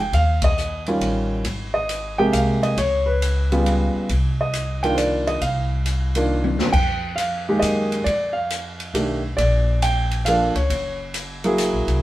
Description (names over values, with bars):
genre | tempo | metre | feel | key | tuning
jazz piano trio | 136 BPM | 3/4 | swing 67% on 8ths | unclear | A4 = 439 Hz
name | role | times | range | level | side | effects
warm grand piano | melody | 0.0-12.0 s | C3 to G5 | -21 LUFS | right 1 dB | none
upright bass | bass | 0.0-12.0 s | F#1 to F#2 | -23 LUFS | equal | none
open jazz drum kit | drums | 0.1-11.9 s | crash cymbal, hi-hat, kick drum, ride cymbal, snare drum, toms | -28 LUFS | left 1 dB | none
room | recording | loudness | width
moderate studio reverb, RT60 0.9 s | band playing live in one room | -19 LUFS | side -15 dB against mid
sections
0.0-6.7 A section; 6.7-12.0 B section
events
band accent 0.3; drum fill 6.3-6.7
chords
0.1 Eb9; 1.4 Abmaj9; 2.8 Db7#11; 4.1 Cm11; 6.7 Fm11; 8.1 F5; 9.4 Bb; 10.7 F#9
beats
| 0.12 0.56 1.00 | 1.45 1.89 2.33 | 2.77 3.21 3.65 | 4.09 4.53 4.97 | 5.41 5.85 6.29 | 6.73 7.17 7.62 | 8.06 8.50 8.94 | 9.38 9.82 10.26 | 10.70 11.14 11.58